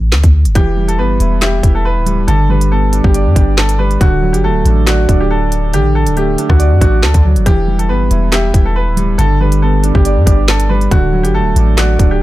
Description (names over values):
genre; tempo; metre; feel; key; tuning
hip hop, drill; 139 BPM; 4/4; half-time; unclear; A4 = 443 Hz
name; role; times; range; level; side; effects
long sustained 808-style bass; bass; 0.0-12.2 s; D1 to G2; -13 LUFS; equal; none
drill drum kit; drums; 0.1-12.1 s; handclaps, hi-hat, kick drum, rim click, snare drum; -13 LUFS; equal; none
clear upright piano; melody; 0.6-12.2 s; F#4 to B4; -18 LUFS; left 1 dB; low-pass filter, ping-pong delay
dark grand piano; accompaniment; 0.6-12.2 s; D3 to E5; -16 LUFS; right 2 dB; low-pass filter
room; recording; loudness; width
little or no reverb; none; -9 LUFS; side -16 dB against mid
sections
0.0-12.2 A section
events
break 0.0-0.6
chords
0.0 D; 0.6 Em; 2.3 G; 4.0 D; 7.5 Em; 9.2 G; 10.9 D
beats
0.12 | 0.55 0.99 1.42 1.85 | 2.28 2.71 3.14 3.58 | 4.01 4.44 4.87 5.30 | 5.73 6.17 6.60 7.03 | 7.46 7.89 8.32 8.76 | 9.19 9.62 10.05 10.48 | 10.91 11.35 11.78 12.21